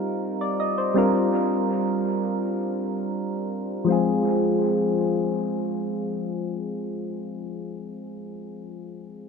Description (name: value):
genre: R&B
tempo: free time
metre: none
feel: none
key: F dorian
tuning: A4 = 440 Hz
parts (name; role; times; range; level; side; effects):
- soft electric-piano-like synth keys; accompaniment; 0.0-9.3 s; F3 to Eb5; -23 LUFS; left 1 dB; chorus, low-pass filter, tape echo
room: moderate spring reverb, RT60 2.3 s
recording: echo-heavy mix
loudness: -22 LUFS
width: side -5 dB against mid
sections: 0.0-3.9 A section; 3.9-6.8 B section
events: filter sweep on synth keys 0.0-3.9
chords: 0.0 F9sus4; 1.0 C9sus4; 3.9 Fm